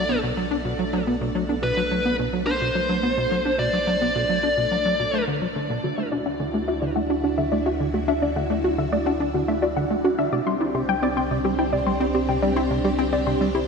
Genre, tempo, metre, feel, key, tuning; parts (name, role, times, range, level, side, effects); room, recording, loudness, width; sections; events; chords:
ambient, sequencer-driven space music; 107 BPM; 4/4; straight; A4 = 440 Hz
dark smooth lead guitar; melody; 0.0-5.2 s; B4 to D5; -25 LUFS; equal; overdrive, shimmer reverb, tape echo
string machine, full ensemble; sustained chords; 0.0-13.7 s; A3 to A4; -28 LUFS; right 1 dB; ensemble chorus, shimmer reverb
tight sequencer bass; riff; 0.0-13.6 s; B2 to F#4; -25 LUFS; equal; analog chorus, shimmer reverb, tape echo
warm sub bass; bass; 0.0-13.7 s; B1 to D2; -33 LUFS; equal
warbly dusty pluck; arpeggios; 5.8-13.6 s; F#4 to C6; -26 LUFS; left 2 dB; chorus, auto-pan, shimmer reverb, tape echo
wet lush hall reverb, RT60 2.6 s; dreamy mix soaked in reverb; -20 LUFS; side -5 dB against mid
0.0-13.7 A section
fade-in on string machine 0.0-13.7; fade-in on sub bass 0.0-13.7
0.0 Bm7; 5.8 Dadd9; 10.3 Csus2